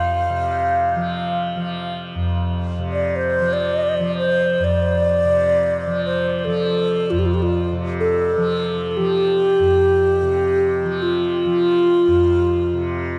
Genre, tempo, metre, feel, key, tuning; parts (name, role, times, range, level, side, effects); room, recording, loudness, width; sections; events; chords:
world meditative, free-time meditation music; free time; F major pentatonic; A4 = 440 Hz
wooden-headed alto flute; melody; 0.0-13.2 s; F4 to F5; -20 LUFS; equal; shimmer reverb
tanpura; drone; 0.0-13.2 s; F2 to F3; -26 LUFS; equal
tubular bells; texture; 0.0-7.0 s; C5; -38 LUFS; equal; shimmer reverb
wet huge ambient reverb, RT60 7.7 s; cassette tape, nothing above 10.8 kHz; -19 LUFS; mono
0.0-13.2 A section